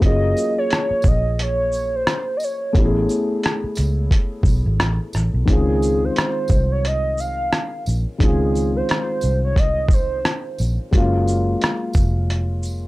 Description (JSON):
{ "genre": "lo-fi hip hop", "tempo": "88 BPM", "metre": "4/4", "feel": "swing 57% on 16ths", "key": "Db major", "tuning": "A4 = 440 Hz", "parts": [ { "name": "warbly nostalgic lead", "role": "melody", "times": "0.0-10.6 s", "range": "Ab4 to F5", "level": "-22 LUFS", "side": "right 1 dB", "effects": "chorus, low-pass filter" }, { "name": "felt-muted upright piano", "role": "accompaniment", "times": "0.0-12.9 s", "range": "Eb3 to Ab4", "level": "-24 LUFS", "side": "left 2 dB", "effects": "cassette tape, low-pass filter" }, { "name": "vintage muted fingered electric bass", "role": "bass", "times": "0.0-12.9 s", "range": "F1 to C#2", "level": "-21 LUFS", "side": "equal", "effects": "none" }, { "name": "dusty soul sampler-style drum kit", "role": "drums", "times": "0.0-12.8 s", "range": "hi-hat, kick drum, rim click, shaker", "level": "-18 LUFS", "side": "equal", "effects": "none" }, { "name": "tambourine", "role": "percussion", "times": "0.4-12.8 s", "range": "none", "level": "-41 LUFS", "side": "right 3 dB", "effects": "none" } ], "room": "little or no reverb", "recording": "dry, gritty hardware recording, transformer saturation", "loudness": "-17 LUFS", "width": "side -19 dB against mid", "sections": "0.0-5.5 A section; 5.5-12.9 B section", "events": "none", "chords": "0.0 Gbmaj9; 2.8 Amaj9; 5.5 Dbmaj9; 10.9 Gbmaj9" }